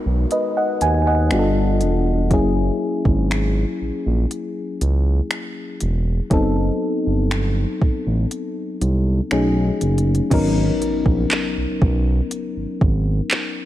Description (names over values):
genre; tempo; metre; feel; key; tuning
contemporary R&B; 60 BPM; 4/4; straight; G# minor; A4 = 440 Hz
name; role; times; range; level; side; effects
mellow FM electric piano; accompaniment; 0.0-13.7 s; F#3 to G#5; -21 LUFS; left 2 dB; chorus
downlifter and impact; sound effects; 0.0-2.3, 10.3-13.7 s; none; -36 LUFS; right 4 dB; none
smooth gliding synth bass; bass; 0.1-13.2 s; E1 to D#2; -19 LUFS; right 1 dB; none
smooth R&B drum kit; drums; 0.3-13.5 s; crash cymbal, finger snaps, handclaps, hi-hat, kick drum; -22 LUFS; right 1 dB; overdrive
room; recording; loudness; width
little or no reverb; none; -17 LUFS; side -13 dB against mid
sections
0.0-10.3 A section; 10.3-13.7 B section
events
kick muted 8.3-10.3; impact 10.3-13.7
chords
0.0 G#m9; 1.3 G9; 2.3 F#9; 6.3 B7b9/F#; 9.3 B13; 10.3 G#m11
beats
0.31 1.31 | 2.31 3.31 4.31 5.31 | 6.31 7.31 8.31 9.31 | 10.31 11.31 12.31 13.31